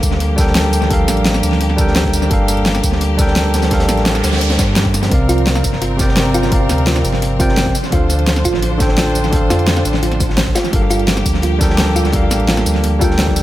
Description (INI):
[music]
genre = liquid drum and bass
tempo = 171 BPM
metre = 4/4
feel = straight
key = G minor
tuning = A4 = 440 Hz
[part]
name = bell-like tine electric piano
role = accompaniment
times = 0.0-13.4 s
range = C3 to G5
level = -18 LUFS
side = equal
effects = analog delay
[part]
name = bright studio string section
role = sustained chords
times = 0.0-13.4 s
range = F3 to A5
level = -24 LUFS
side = equal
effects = none
[part]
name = sub bass with octave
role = bass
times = 0.0-13.4 s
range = G1 to G2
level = -18 LUFS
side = equal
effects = none
[part]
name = crunchy breakbeat drum kit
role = drums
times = 0.0-13.4 s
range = hi-hat, snare drum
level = -26 LUFS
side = equal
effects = high-pass filter on hats, studio reverb, high-pass filter on snare, high-pass filter on room, analog delay
[part]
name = electronic kick drum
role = drums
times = 0.0-13.3 s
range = none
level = -18 LUFS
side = equal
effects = studio reverb
[part]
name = pop drum kit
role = drums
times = 0.0-13.4 s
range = hi-hat, snare drum, tambourine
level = -19 LUFS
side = equal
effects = studio reverb, analog delay
[part]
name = noise sweep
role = sound effects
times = 4.0-5.1 s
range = none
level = -25 LUFS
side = right 3 dB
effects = none
[part]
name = thumb-piano-like synth pluck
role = arpeggios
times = 5.3-13.2 s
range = F4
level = -23 LUFS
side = right 1 dB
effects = chorus, analog delay
[sound]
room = light reverb, small room ambience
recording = echo-heavy mix, faint mains hum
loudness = -12 LUFS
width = side -14 dB against mid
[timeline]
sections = 0.0-13.4 A section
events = noise sweep 4.0-5.1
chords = 0.0 Gm7; 5.1 C7sus4; 7.7 Dm7; 10.6 Gm7